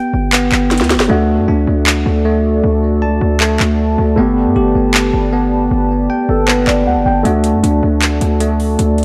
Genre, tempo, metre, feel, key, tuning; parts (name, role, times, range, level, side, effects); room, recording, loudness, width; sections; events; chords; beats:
hip hop, trap; 156 BPM; 4/4; half-time; D major; A4 = 439 Hz
bell-like tine electric piano; arpeggios; 0.0-9.0 s; A3 to A5; -18 LUFS; equal; digital delay
distorted 808-style bass; bass; 0.1-9.0 s; G1 to G2; -18 LUFS; equal; distortion
trap drum kit; drums; 0.3-9.0 s; handclaps, hi-hat, snare drum; -18 LUFS; equal
dark baby grand piano; accompaniment; 1.1-9.0 s; A3 to G5; -22 LUFS; equal
hollow soft pad; sustained chords; 1.1-9.0 s; F#4 to A5; -25 LUFS; equal; chorus
light reverb, digital ambience; dark, warm production; -14 LUFS; mono
0.0-9.0 A section
break 0.0-1.1; drum fill 0.7-1.1; hi-hats muted 1.1-7.3
0.0 G; 1.1 D; 4.2 Gadd9; 7.3 D
0.33 0.71 | 1.10 1.48 1.87 2.25 | 2.63 3.02 3.40 3.79 | 4.17 4.56 4.94 5.33 | 5.71 6.10 6.48 6.87 | 7.25 7.63 8.02 8.40 | 8.79